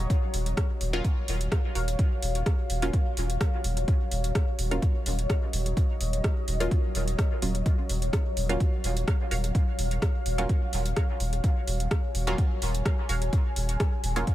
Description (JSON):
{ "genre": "dub techno", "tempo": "127 BPM", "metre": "4/4", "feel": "swing 53% on 16ths", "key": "Eb minor", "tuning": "A4 = 444 Hz", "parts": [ { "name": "deep dark ambient pad", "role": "sustained chords", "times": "0.0-14.3 s", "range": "Gb3 to Ab5", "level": "-35 LUFS", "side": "left 1 dB", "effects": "chorus, built-in reverb, sidechain pumping" }, { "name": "filtered dub chord stab", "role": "stabs", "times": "0.0-14.3 s", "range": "Gb3 to F4", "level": "-36 LUFS", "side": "right 1 dB", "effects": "chorus, phaser, sidechain pumping, dub echo" }, { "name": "warm sub bass", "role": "bass", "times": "0.0-14.2 s", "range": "Eb1", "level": "-28 LUFS", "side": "equal", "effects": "sidechain pumping" }, { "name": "deep house drum kit", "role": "drums", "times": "0.1-14.3 s", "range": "hi-hat, rim click", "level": "-34 LUFS", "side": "right 1 dB", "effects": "overdrive, small room ambience" }, { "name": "electronic kick drum", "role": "drums", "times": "0.1-14.3 s", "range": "none", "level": "-25 LUFS", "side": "equal", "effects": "overdrive, small room ambience" }, { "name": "filtered dub chord stab", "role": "riff", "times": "0.9-4.8, 8.5-14.3 s", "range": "Gb4 to F5", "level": "-41 LUFS", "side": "right 3 dB", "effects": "phaser, vintage 12-bit sampler grit, sidechain pumping, dub echo" } ], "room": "digital ambience", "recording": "none", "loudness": "-24 LUFS", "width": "side -14 dB against mid", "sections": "0.0-14.3 A section", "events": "none", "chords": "0.0 Ebm9", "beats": "| 0.10 0.57 1.04 1.52 | 1.99 2.46 2.93 3.41 | 3.88 4.35 4.82 5.30 | 5.77 6.24 6.71 7.19 | 7.66 8.13 8.60 9.08 | 9.55 10.02 10.49 10.97 | 11.44 11.91 12.38 12.86 | 13.33 13.80 14.27" }